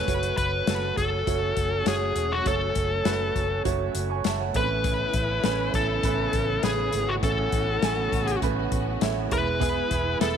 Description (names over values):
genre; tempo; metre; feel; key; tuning
piano-driven pop; 101 BPM; 4/4; straight; F# minor; A4 = 440 Hz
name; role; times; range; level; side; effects
smooth overdriven lead guitar; melody; 0.0-10.4 s; F#4 to B4; -27 LUFS; left 3 dB; slapback echo
clear concert grand piano; accompaniment; 0.0-10.4 s; A2 to C#6; -30 LUFS; right 12 dB; none
warm studio string section; sustained chords; 0.0-10.4 s; C#3 to F#4; -34 LUFS; left 1 dB; none
direct-recorded clean electric guitar; riff; 0.0-0.1, 9.6-10.4 s; E3 to G#4; -32 LUFS; right 14 dB; none
vintage muted fingered electric bass; bass; 0.0-10.4 s; E1 to A1; -30 LUFS; equal; none
natural country drum kit; drums; 0.1-10.3 s; hi-hat, kick drum, snare drum; -29 LUFS; left 3 dB; none
room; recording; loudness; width
light reverb, small room ambience; 1960s-style stereo; -23 LUFS; side -8 dB against mid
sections
0.1-10.4 A section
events
none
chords
0.1 F#m; 4.5 Aadd9; 9.3 E